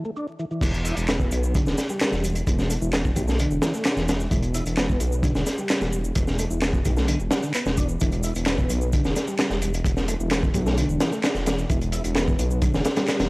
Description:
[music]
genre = breakbeat, breaks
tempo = 130 BPM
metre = 4/4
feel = straight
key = E minor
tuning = A4 = 440 Hz
[part]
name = percussive tonewheel organ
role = riff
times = 0.0-13.3 s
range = D3 to E4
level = -30 LUFS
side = equal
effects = chorus vibrato, fast rotary speaker, vintage 12-bit sampler grit, low-pass filter, tape echo
[part]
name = electronic shaker and handclaps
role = drums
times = 0.0-13.3 s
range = none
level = -33 LUFS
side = equal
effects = overdrive, low-pass filter on perc, low-pass filter on snare, low-pass filter on room
[part]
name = dark detuned saw bass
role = bass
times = 0.6-13.3 s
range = E1 to B1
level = -25 LUFS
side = equal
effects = none
[part]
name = crunchy breakbeat drum kit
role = drums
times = 0.6-13.3 s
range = crash cymbal, hi-hat, kick drum, snare drum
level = -24 LUFS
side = equal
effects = none
[sound]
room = studio reverb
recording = dry, gritty hardware recording, transformer saturation, vinyl crackle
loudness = -21 LUFS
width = side -24 dB against mid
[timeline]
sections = 0.6-13.3 A section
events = drop 0.6-13.3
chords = 0.0 E7(no3); 0.6 Em7

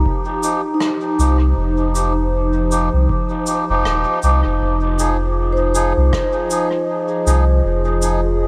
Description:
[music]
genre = ambient dub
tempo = 79 BPM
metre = 4/4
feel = swing 60% on 16ths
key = F minor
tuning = A4 = 440 Hz
[part]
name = warbly tape-like pad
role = sustained chords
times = 0.0-8.5 s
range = F3 to Eb5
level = -25 LUFS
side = equal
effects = chorus, built-in reverb
[part]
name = vibraphone with medium mallets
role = arpeggios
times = 0.0-8.5 s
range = Eb4 to Bb5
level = -26 LUFS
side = equal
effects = delay
[part]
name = soft dub sub bass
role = bass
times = 0.0-8.5 s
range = Eb1 to C2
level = -19 LUFS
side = equal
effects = tube saturation
[part]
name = electronic kick drum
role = drums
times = 0.1-6.3 s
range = none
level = -25 LUFS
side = equal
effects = none
[part]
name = melodica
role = stabs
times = 0.4-8.2 s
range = F3 to Ab4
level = -24 LUFS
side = equal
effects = dub echo
[part]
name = cabasa and rim click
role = drums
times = 0.4-8.2 s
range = none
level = -32 LUFS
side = equal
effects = dub echo
[sound]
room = moderate huge ambient reverb, RT60 9.3 s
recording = dreamy mix soaked in reverb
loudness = -17 LUFS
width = mono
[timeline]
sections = 0.0-4.6 A section; 4.6-8.5 B section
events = none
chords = 0.0 Ebadd9; 4.6 Fm7

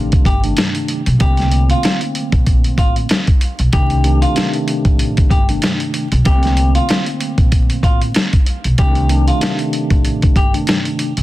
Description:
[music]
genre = hip hop, boom-bap hip-hop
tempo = 95 BPM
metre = 4/4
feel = swing 56% on 16ths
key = C dorian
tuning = A4 = 443 Hz
[part]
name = mellow tine electric piano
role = accompaniment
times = 0.0-11.1 s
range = C2 to D4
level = -21 LUFS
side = equal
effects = medium stereo tremolo, high-pass filter, low-pass filter
[part]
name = upright bass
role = bass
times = 0.0-11.2 s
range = G1 to C2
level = -16 LUFS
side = equal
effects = none
[part]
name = dusty soul sampler-style drum kit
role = drums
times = 0.1-11.2 s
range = hi-hat, kick drum, snare drum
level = -15 LUFS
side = equal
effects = none
[part]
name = semi-hollow electric guitar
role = melody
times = 0.3-10.5 s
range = F4 to G4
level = -24 LUFS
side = left 1 dB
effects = high-pass filter, low-pass filter, ping-pong delay
[sound]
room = little or no reverb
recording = dense, heavily limited modern master, vinyl crackle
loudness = -12 LUFS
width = side -16 dB against mid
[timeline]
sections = 0.0-11.2 A section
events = none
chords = 0.0 Cm69; 1.2 Bbmaj9; 3.7 Cm69; 6.3 Bbmaj9; 8.8 Cm69

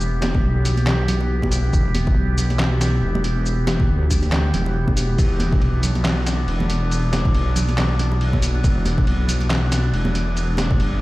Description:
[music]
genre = deep dubstep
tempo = 139 BPM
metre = 4/4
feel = swing 57% on 16ths, half-time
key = E minor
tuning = A4 = 441 Hz
[part]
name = overtone-sweeping drone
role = sustained chords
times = 0.0-11.0 s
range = E3 to G4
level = -28 LUFS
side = equal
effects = chorus, built-in reverb
[part]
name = wobble bass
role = bass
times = 0.0-11.0 s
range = E1 to D2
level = -20 LUFS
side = equal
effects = chorus
[part]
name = trip hop sampler-style drum kit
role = drums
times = 0.0-10.9 s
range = handclaps, hi-hat, ride cymbal, shaker, snare drum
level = -25 LUFS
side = equal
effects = overdrive
[part]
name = bongos and congas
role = percussion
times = 0.2-10.7 s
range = none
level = -28 LUFS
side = right 2 dB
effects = dub echo
[part]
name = electronic kick drum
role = drums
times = 0.3-10.8 s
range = none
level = -20 LUFS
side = equal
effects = overdrive
[sound]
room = digital ambience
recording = played on a big sound system in a bare room, stone room reverb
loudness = -17 LUFS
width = side -18 dB against mid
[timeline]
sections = 0.0-11.0 A section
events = none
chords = 0.0 Em

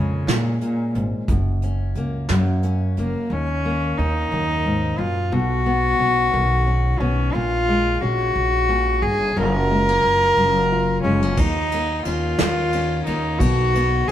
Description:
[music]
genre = acoustic folk duo or small band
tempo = 59 BPM (dotted quarters)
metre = 6/8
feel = straight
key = Eb minor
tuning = A4 = 442 Hz
[part]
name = warm cello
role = melody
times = 0.0-14.1 s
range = Bb2 to Bb4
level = -21 LUFS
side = left 1 dB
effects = none
[part]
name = fingerpicked steel-string acoustic guitar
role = accompaniment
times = 0.0-14.1 s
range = Eb2 to F4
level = -26 LUFS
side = left 3 dB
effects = none
[part]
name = upright bass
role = bass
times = 0.0-14.1 s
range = Gb1 to Bb2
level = -22 LUFS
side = right 1 dB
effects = none
[part]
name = soft brush drum kit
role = drums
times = 0.3-3.1, 11.4-14.1 s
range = hi-hat, kick drum, ride cymbal, snare drum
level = -24 LUFS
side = right 1 dB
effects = none
[sound]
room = wet stone room reverb, RT60 1.3 s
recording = band playing live in one room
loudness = -18 LUFS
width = side -11 dB against mid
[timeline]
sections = 0.0-3.3 A section; 3.3-14.1 B section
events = cello solo 0.0-3.3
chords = 0.0 Bbm7; 1.3 Gb; 3.3 Ebm7; 5.3 Badd9; 7.3 Bbm7; 9.4 Gbmaj7; 11.4 Eb5; 13.4 B

